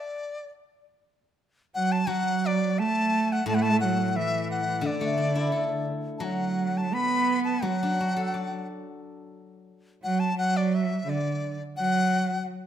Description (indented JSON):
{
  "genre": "chinese traditional, Chinese chamber ensemble",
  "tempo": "86 BPM",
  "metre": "2/4",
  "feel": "rubato",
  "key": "D gong mode",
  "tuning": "A4 = 440 Hz",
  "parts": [
    { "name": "mellow dizi", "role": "melody", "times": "0.0-12.5 s", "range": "D5 to B5", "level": "-28 LUFS", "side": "left 3 dB", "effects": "none" },
    { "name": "rich cello", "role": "second line", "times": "1.8-12.5 s", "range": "D3 to B3", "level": "-27 LUFS", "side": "right 4 dB", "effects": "none" },
    { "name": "steel-string zither", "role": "accompaniment", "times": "2.1-9.7 s", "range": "A2 to D5", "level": "-32 LUFS", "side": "left 3 dB", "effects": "none" }
  ],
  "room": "moderate recital hall reverb, RT60 1.5 s",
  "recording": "none",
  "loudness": "-24 LUFS",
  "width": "side -10 dB against mid",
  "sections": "0.7-11.8 A section",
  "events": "none",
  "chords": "none"
}